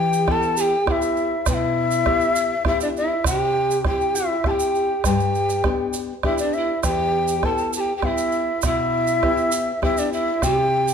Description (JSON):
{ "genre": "andean folk, Andean ensemble", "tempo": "100 BPM", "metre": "3/4", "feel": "straight", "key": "E minor", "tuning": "A4 = 445 Hz", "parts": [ { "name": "breathy mellow large quena", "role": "melody", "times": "0.0-10.9 s", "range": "D5 to A5", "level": "-22 LUFS", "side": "left 2 dB", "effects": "none" }, { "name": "breathy mellow pan flute", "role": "second line", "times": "0.0-10.9 s", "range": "D4 to A4", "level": "-25 LUFS", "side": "right 6 dB", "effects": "none" }, { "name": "nylon-string guitar", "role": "accompaniment", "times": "0.0-10.9 s", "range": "E2 to G4", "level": "-25 LUFS", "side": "left 5 dB", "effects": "none" }, { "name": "tube shaker", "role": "percussion", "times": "0.1-10.9 s", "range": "none", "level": "-31 LUFS", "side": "right 7 dB", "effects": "none" }, { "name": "bombo", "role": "percussion", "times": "0.3-10.6 s", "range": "none", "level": "-26 LUFS", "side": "right 3 dB", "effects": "none" } ], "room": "moderate recital hall reverb, RT60 1.5 s", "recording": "minimal, uncompressed stereo recording", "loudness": "-18 LUFS", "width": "side -7 dB against mid", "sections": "0.0-10.9 A section", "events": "none", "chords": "0.0 Em; 3.3 C; 5.0 G; 6.8 Em; 10.4 C5", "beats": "0.28 0.87 | 1.47 2.06 2.66 | 3.25 3.85 4.45 | 5.04 5.64 6.24 | 6.83 7.43 8.03 | 8.63 9.22 9.82 | 10.42" }